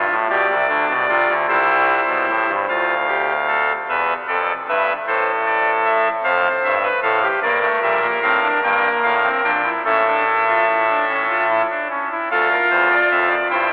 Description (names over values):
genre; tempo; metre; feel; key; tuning
classical, baroque-style 4-part fugue for pipe organ; 50 BPM (dotted quarters); 6/8; straight; F major, D minor from 7.4 s; A4 = 444 Hz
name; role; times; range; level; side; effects
pipe organ, soft reed; solo; 0.0-13.7 s; D1 to G5; -17 LUFS; equal; none
room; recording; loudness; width
wet cathedral reverb, RT60 4.9 s; worn, warbling old tape, cassette tape, warbly pitch drift, telephone sound; -17 LUFS; mono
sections
0.0-2.7 A section; 2.7-12.3 B section; 12.3-13.7 C section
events
none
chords
0.3 G/B; 1.5 C; 2.7 Dmadd11; 3.9 Em7; 5.1 Am; 6.2 Fmaj9#11; 7.4 Gm; 9.8 A; 12.3 Dm